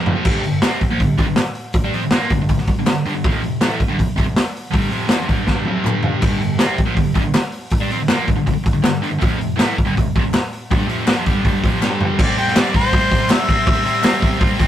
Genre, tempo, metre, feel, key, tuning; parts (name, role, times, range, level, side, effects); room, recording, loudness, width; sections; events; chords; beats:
garage rock duo or trio; 161 BPM; 4/4; straight; A4 = 440 Hz
overdriven electric guitar; riff; 0.0-14.7 s; F2 to D4; -20 LUFS; right 1 dB
raw garage drum kit; drums; 0.1-14.7 s; crash cymbal, hi-hat, kick drum, snare drum, toms; -17 LUFS; equal
group handclap; percussion; 0.6-14.1 s; -30 LUFS; left 4 dB
clear harmonica; melody; 12.2-14.4 s; C5 to G5; -20 LUFS; left 2 dB; overdrive
moderate small room reverb, RT60 0.5 s; rough rehearsal-room recording; -15 LUFS; side -11 dB against mid
0.3-12.2 A section; 12.2-14.7 B section
drum fill 0.0, 5.5-6.2, 11.8-12.2
0.3 G5; 3.2 F5; 5.3 G5; 5.7 F5; 5.9 G5; 9.2 F5; 11.3 G5; 11.6 F5; 11.8 G5; 12.2 C
| 0.26 0.63 1.00 1.38 | 1.75 2.12 2.50 2.87 | 3.24 3.62 3.99 4.36 | 4.74 5.11 5.48 5.86 | 6.23 6.60 6.98 7.35 | 7.72 8.10 8.47 8.84 | 9.22 9.59 9.96 10.33 | 10.71 11.08 11.45 11.82 | 12.19 12.56 12.93 13.30 | 13.67 14.04 14.41